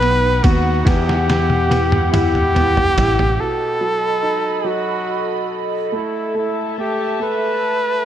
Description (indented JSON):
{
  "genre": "six-eight pop ballad",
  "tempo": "47 BPM (dotted quarters)",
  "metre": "6/8",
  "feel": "straight",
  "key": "E minor",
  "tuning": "A4 = 440 Hz",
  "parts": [
    { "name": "clear flugelhorn", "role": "melody", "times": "0.0-8.1 s", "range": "E4 to B4", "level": "-19 LUFS", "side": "equal", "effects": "ping-pong delay" },
    { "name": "clear concert grand piano", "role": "accompaniment", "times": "0.0-8.1 s", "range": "B2 to E4", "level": "-25 LUFS", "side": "right 2 dB", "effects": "none" },
    { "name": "airy breathy pad", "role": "sustained chords", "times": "0.0-8.1 s", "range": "D#4 to B5", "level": "-23 LUFS", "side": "left 1 dB", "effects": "chorus" },
    { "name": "fretless electric bass", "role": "bass", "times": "0.0-3.4 s", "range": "A1 to E2", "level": "-19 LUFS", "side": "equal", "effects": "analog chorus" },
    { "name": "lo-fi sampler-style drum kit", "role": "drums", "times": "0.0-3.4 s", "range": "kick drum, ride cymbal, snare drum, toms", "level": "-19 LUFS", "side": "equal", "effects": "overdrive" }
  ],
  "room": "light reverb",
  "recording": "none",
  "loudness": "-15 LUFS",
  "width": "side -10 dB against mid",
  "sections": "0.0-3.4 A section; 3.4-8.1 B section",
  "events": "drum fill 0.9-3.4",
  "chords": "0.0 B; 0.9 Emadd9; 3.4 B7; 5.9 A5"
}